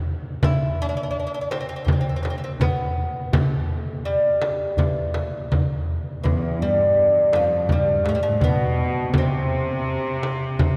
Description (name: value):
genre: Persian modal ensemble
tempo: 83 BPM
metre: 4/4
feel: straight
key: C dastgah chahargah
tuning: A4 = 444 Hz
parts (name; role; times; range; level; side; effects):
- tombak; percussion; 0.1-10.8 s; none; -29 LUFS; equal; none
- lute; melody; 0.4-10.8 s; E3 to E4; -25 LUFS; equal; none
- frame drum; percussion; 0.4-10.8 s; none; -28 LUFS; equal; none
- warm symphonic cello section; second line; 6.2-10.8 s; E2 to C3; -27 LUFS; equal; none
room: wet church reverb, RT60 3.6 s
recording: recorded in a church or concert hall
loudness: -22 LUFS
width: mono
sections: 0.0-10.8 A section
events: none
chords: none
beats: | 0.43 1.15 1.88 2.61 | 3.33 4.06 4.79 5.51 | 6.24 6.97 7.69 8.42 | 9.15 9.87 10.60